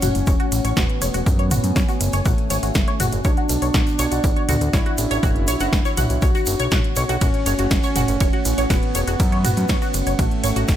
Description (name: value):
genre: melodic techno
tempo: 121 BPM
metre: 4/4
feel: straight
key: F# minor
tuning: A4 = 443 Hz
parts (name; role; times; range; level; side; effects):
- expressive synth lead; melody; 0.0-10.8 s; A3 to F#4; -26 LUFS; equal; wide subtle chorus, dub echo
- dark analog pad; sustained chords; 0.0-10.8 s; A3 to G#5; -29 LUFS; equal; lush chorus, sidechain pumping
- tight sequenced synth; arpeggios; 0.0-10.6 s; F#4 to C#6; -27 LUFS; equal; chorus, sidechain pumping, dub echo
- fat analog bass; bass; 0.0-10.8 s; E1 to F#2; -23 LUFS; equal; sidechain pumping
- techno drum kit; drums; 0.0-10.8 s; hi-hat, ride cymbal, snare drum, toms; -25 LUFS; equal; sidechain pumping on hats, small room ambience, sidechain pumping on toms, sidechain pumping on cymbals
- egg shaker; percussion; 0.0-10.8 s; none; -31 LUFS; right 3 dB; none
- electronic kick drum; drums; 0.3-10.8 s; none; -20 LUFS; equal; small room ambience
room: light reverb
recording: echo-heavy mix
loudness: -17 LUFS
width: side -11 dB against mid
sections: 0.0-10.8 A section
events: none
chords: 0.0 F#m; 3.2 Bm; 7.2 F#m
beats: 0.27 0.77 | 1.26 1.76 2.26 2.75 | 3.25 3.74 4.24 4.74 | 5.23 5.73 6.22 6.72 | 7.21 7.71 8.21 8.70 | 9.20 9.69 10.19 10.69